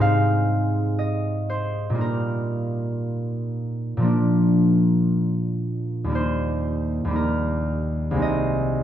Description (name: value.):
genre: classical, solo harp piece.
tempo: 59 BPM.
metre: 4/4.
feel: rubato.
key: Eb major.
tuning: A4 = 441 Hz.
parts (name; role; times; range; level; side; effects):
concert harp; solo; 0.0-8.8 s; C2 to F5; -20 LUFS; equal; none.
room: wet recital hall reverb, RT60 1.4 s.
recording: dark, warm production.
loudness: -21 LUFS.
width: side -10 dB against mid.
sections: 0.0-8.8 A section.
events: none.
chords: 0.0 Ab; 2.0 Eb/Bb; 4.1 Bb; 6.1 Eb; 8.2 Ab/C.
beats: 0.00 0.98 | 2.00 3.04 4.06 5.11 | 6.13 7.15 8.21.